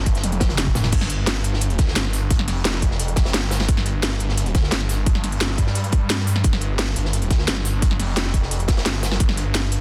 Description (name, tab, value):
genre	dark technical drum and bass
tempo	174 BPM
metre	4/4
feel	straight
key	unclear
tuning	A4 = 440 Hz
part	snarling distorted saw bass	bass	0.0-9.8 s	F1 to G2	-25 LUFS	equal	distortion, overdrive, sidechain pumping
part	crunchy breakbeat drum kit	drums	0.1-9.8 s	hi-hat, snare drum	-33 LUFS	equal	high-pass filter on hats, high-pass filter on snare, high-pass filter on room
part	drum and bass drum kit	drums	0.1-9.8 s	crash cymbal, hi-hat, snare drum, toms	-27 LUFS	equal	none
part	electronic kick drum	drums	0.1-9.3 s	none	-21 LUFS	equal	none
room	small room reverb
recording	dense, heavily limited modern master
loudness	-21 LUFS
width	mono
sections	0.0-9.8 A section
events	drum fill 0.2-0.9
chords	none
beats	0.24 0.58 | 0.93 1.27 1.62 1.96 | 2.31 2.65 3.00 3.34 | 3.69 4.03 4.37 4.72 | 5.06 5.41 5.75 6.10 | 6.44 6.79 7.13 7.48 | 7.82 8.17 8.51 8.86 | 9.20 9.55